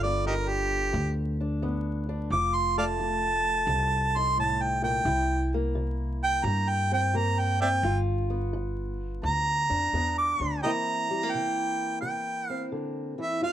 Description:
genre	acoustic country blues, solo or duo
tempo	87 BPM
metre	4/4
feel	swing 67% on 8ths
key	C mixolydian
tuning	A4 = 439 Hz
part	clear harmonica	melody	0.0-13.5 s	Eb4 to D6	-26 LUFS	right 2 dB	plate reverb
part	fingerpicked old ladder-braced acoustic guitar	accompaniment	0.0-13.5 s	F2 to F4	-32 LUFS	left 1 dB	none
part	upright bass	bass	0.0-10.6 s	F1 to G2	-29 LUFS	equal	none
room	moderate booth ambience, RT60 0.2 s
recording	vinyl crackle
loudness	-25 LUFS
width	side -11 dB against mid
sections	0.0-10.6 A section; 10.6-13.5 B section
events	harmonica solo 0.0-10.6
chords	0.0 G7; 2.3 F7; 5.1 C7; 7.8 G7; 10.6 C7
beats	0.25 0.93 1.62 | 2.31 3.00 3.69 4.38 | 5.07 5.76 6.45 7.14 | 7.83 8.52 9.22 9.91 | 10.61 11.30 12.00 12.70 | 13.40

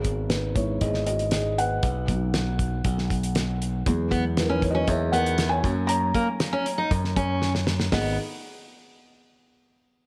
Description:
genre	piano-driven pop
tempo	118 BPM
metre	4/4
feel	straight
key	G# minor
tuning	A4 = 440 Hz
part	felt-muted upright piano	accompaniment	0.0-8.2 s	G#1 to A#5	-30 LUFS	equal	none
part	modern bright picked electric bass	bass	0.0-8.2 s	G#1 to F#2	-29 LUFS	equal	none
part	damped 70s drum kit	drums	0.0-8.0 s	hi-hat, kick drum, snare drum	-30 LUFS	equal	none
part	fingerpicked steel-string acoustic guitar	riff	4.1-8.2 s	A#3 to D#4	-30 LUFS	equal	none
room	moderate spring reverb, RT60 2.4 s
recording	none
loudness	-25 LUFS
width	mono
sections	0.0-7.9 A section; 7.9-10.0 B section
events	felt piano solo 0.0-7.9; drum fill 7.4-7.9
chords	0.0 G#m; 1.8 B; 3.9 Eadd9; 5.6 F#; 7.9 G#m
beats	0.30 0.81 1.32 | 1.83 2.34 2.85 3.35 | 3.86 4.37 4.88 5.39 | 5.90 6.40 6.91 7.42 | 7.93

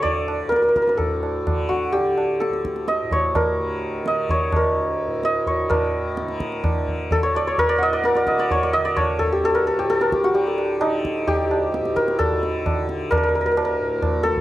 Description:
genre	indian classical, Hindustani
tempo	129 BPM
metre	4/4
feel	straight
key	unclear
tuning	A4 = 440 Hz
part	santur	melody	0.0-14.4 s	Eb4 to F#5	-20 LUFS	equal	none
part	tanpura	drone	0.0-14.4 s	D2 to D3	-29 LUFS	equal	none
part	tabla	percussion	0.0-14.4 s	none	-26 LUFS	right 1 dB	none
room	little or no reverb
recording	dry, close 1970s-style studio recording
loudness	-19 LUFS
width	side -14 dB against mid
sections	0.0-5.7 A section; 5.7-14.4 B section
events	speeding up 0.0-14.4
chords	none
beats	| 0.04 0.51 0.99 1.47 | 1.94 2.41 2.89 3.36 | 3.83 4.30 4.77 5.24 | 5.71 6.18 6.65 7.11 | 7.58 8.04 8.51 8.97 | 9.44 9.90 10.36 10.82 | 11.28 11.74 12.20 12.65 | 13.11 13.57 14.02

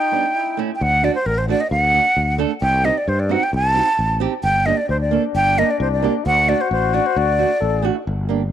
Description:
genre	klezmer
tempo	132 BPM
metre	2/4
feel	straight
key	D phrygian dominant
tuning	A4 = 439 Hz
part	breathy mellow silver concert flute	melody	0.0-7.8 s	Bb4 to A5	-18 LUFS	right 1 dB	none
part	mellow trombone	second line	0.0-0.8, 4.4-8.0 s	D4 to A4	-24 LUFS	left 12 dB	none
part	nylon-string guitar	accompaniment	0.1-8.4 s	G3 to Bb4	-24 LUFS	right 10 dB	none
part	sustaining fretless electric bass	bass	0.8-8.5 s	G1 to G2	-21 LUFS	left 1 dB	none
room	light reverb, small room ambience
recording	1960s-style stereo with parts hard left and right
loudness	-16 LUFS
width	side -10 dB against mid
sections	0.8-8.1 A section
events	break 0.0-0.8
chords	0.4 A7; 0.8 D; 2.6 Cm; 4.4 Gm; 6.2 D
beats	0.36 | 0.81 1.26 | 1.72 2.17 | 2.62 3.08 | 3.53 3.98 | 4.44 4.89 | 5.34 5.80 | 6.25 6.70 | 7.16 7.61 | 8.07 8.52

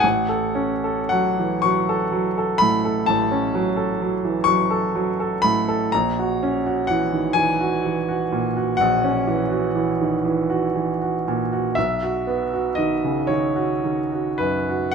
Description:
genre	classical, romantic nocturne for solo piano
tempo	35-43 BPM (dotted quarters)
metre	12/8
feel	rubato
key	unclear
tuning	A4 = 439 Hz
part	bright grand piano	solo	0.0-14.9 s	A1 to C#6	-19 LUFS	right 1 dB	none
room	light reverb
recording	minimal, uncompressed stereo recording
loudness	-19 LUFS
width	side -6 dB against mid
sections	0.0-14.9 A section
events	none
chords	0.0 F#m/A; 5.9 F#7/A#; 11.8 B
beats	| 0.03 1.64 3.06 4.46 | 5.92 7.34 8.78 10.24 | 11.76 13.29 14.94

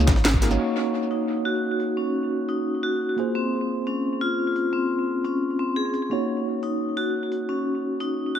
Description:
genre	liquid drum and bass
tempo	174 BPM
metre	4/4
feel	straight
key	Eb dorian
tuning	A4 = 440 Hz
part	mellow tine electric piano	accompaniment	0.0-8.4 s	Bb3 to Db5	-28 LUFS	right 1 dB	medium stereo tremolo, dub echo
part	warm sub bass	bass	0.0-0.6 s	Ab1	-21 LUFS	equal	none
part	drum and bass drum kit	drums	0.1-8.1 s	crash cymbal, hi-hat, snare drum	-25 LUFS	equal	low-pass filter on snare, low-pass filter on hats, low-pass filter on cymbals, low-pass filter on room, tape echo
part	jungle sampler-style drum kit	drums	0.1-0.6 s	hi-hat, snare drum	-31 LUFS	right 1 dB	high-pass filter on snare, high-pass filter on hats
part	vibraphone with medium hard mallets	arpeggios	0.6-8.4 s	C4 to Ab4	-25 LUFS	left 2 dB	low-pass filter, analog delay
room	wet spring reverb, RT60 2.0 s, digital ambience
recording	echo-heavy mix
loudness	-22 LUFS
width	side -9 dB against mid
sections	0.6-8.4 A section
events	band accent 0.2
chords	0.0 Db69; 0.6 Ebm7; 3.2 Bbm9; 6.1 Ebm7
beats	0.25 | 0.59 0.94 1.28 1.63 | 1.97 2.32 2.66 3.01 | 3.35 3.70 4.04 4.39 | 4.73 5.08 5.42 5.76 | 6.11 6.46 6.80 7.14 | 7.49 7.83 8.18

